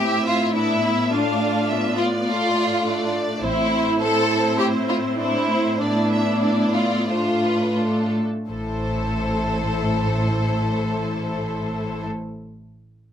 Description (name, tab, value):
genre	quick classical-period movement for string orchestra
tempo	82-105 BPM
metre	4/4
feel	rubato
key	A minor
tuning	A4 = 440 Hz
part	rich symphonic violin section	melody	0.0-12.1 s	A4 to F5	-29 LUFS	left 1 dB	none
part	rich studio violin section	second line	0.0-12.1 s	D4 to A4	-23 LUFS	equal	none
part	warm studio viola section	accompaniment	0.0-12.0 s	A3 to F4	-26 LUFS	equal	none
part	rich studio cello section	bass	0.0-12.0 s	A2	-25 LUFS	equal	none
part	rich studio double bass section	bass	3.4-4.0, 8.5-12.0 s	A1	-27 LUFS	equal	none
room	light reverb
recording	close, detailed microphones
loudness	-19 LUFS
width	side -9 dB against mid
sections	0.0-8.5 A section; 8.5-11.3 B section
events	slowing down 2.3-8.5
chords	0.0 Am; 1.1 Dm/A; 3.4 Am; 5.8 Dm/A; 8.5 Am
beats	0.55 | 1.12 1.70 2.27 2.84 | 3.41 3.99 4.58 5.19 | 5.81 6.44 7.09 7.78 | 8.50 9.19 9.88 10.59